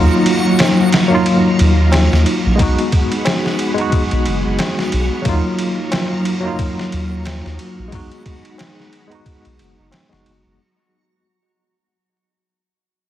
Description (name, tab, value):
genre	trip hop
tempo	90 BPM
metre	4/4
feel	swing 57% on 16ths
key	unclear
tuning	A4 = 438 Hz
part	tine electric piano	accompaniment	0.0-10.6 s	Gb3 to F#4	-17 LUFS	equal	medium stereo tremolo, tape echo
part	string machine, cellos	sustained chords	0.0-10.6 s	Gb3 to B5	-23 LUFS	equal	ensemble chorus, vintage 12-bit sampler grit
part	soft dub sub bass	bass	0.0-10.6 s	F#1 to Eb2	-16 LUFS	equal	tube saturation
part	backwards swelling texture	texture	0.0-10.6 s	Gb3 to Gb4	-26 LUFS	left 1 dB	built-in reverb
part	trip hop sampler-style drum kit	drums	0.3-10.4 s	kick drum, ride cymbal, snare drum	-20 LUFS	right 1 dB	overdrive, studio reverb
part	tabla	percussion	0.6-10.1 s	none	-27 LUFS	left 2 dB	none
room	light reverb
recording	heavily compressed radio sound, vinyl crackle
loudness	-13 LUFS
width	side -12 dB against mid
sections	0.0-10.6 A section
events	fade-out 0.0-10.6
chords	0.0 Ebmadd9; 2.6 B6; 5.3 Ebmadd9; 7.9 B6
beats	0.59 1.26 1.93 | 2.59 3.26 3.92 4.59 | 5.26 5.92 6.59 7.26 | 7.92 8.59 9.26 9.93